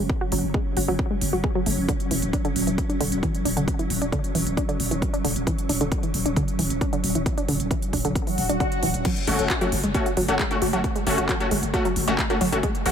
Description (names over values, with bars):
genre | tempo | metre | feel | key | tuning
driving peak-time techno | 134 BPM | 4/4 | straight | unclear | A4 = 440 Hz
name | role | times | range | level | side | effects
wide unison pluck | riff | 0.0-12.9 s | D3 to F#4 | -27 LUFS | equal | sidechain pumping, ping-pong delay
growling 808-style bass | bass | 0.0-12.9 s | D1 to F#1 | -28 LUFS | equal | sidechain pumping, low-pass filter
swarming drone | drone | 0.0-12.9 s | F#3 to C#4 | -29 LUFS | equal | built-in reverb, sidechain pumping
electronic kick drum | drums | 0.1-12.7 s | none | -27 LUFS | equal | none
techno drum kit | drums | 0.3-12.9 s | crash cymbal, handclaps, hi-hat | -29 LUFS | right 1 dB | sidechain pumping on hats, sidechain pumping on cymbals
swell | sound effects | 8.3-9.1 s | none | -32 LUFS | equal | none
rave stab | stabs | 9.3-12.9 s | A3 to F#4 | -25 LUFS | left 2 dB | chorus, built-in reverb, cassette tape, sidechain pumping, digital delay
room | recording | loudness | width
light reverb | none | -21 LUFS | side -8 dB against mid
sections
0.0-12.9 A section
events
filter sweep on synth arpeggio sound 0.0-12.9; swell 8.3-9.1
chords
0.0 F#5; 1.9 Dmaj7; 9.1 F#m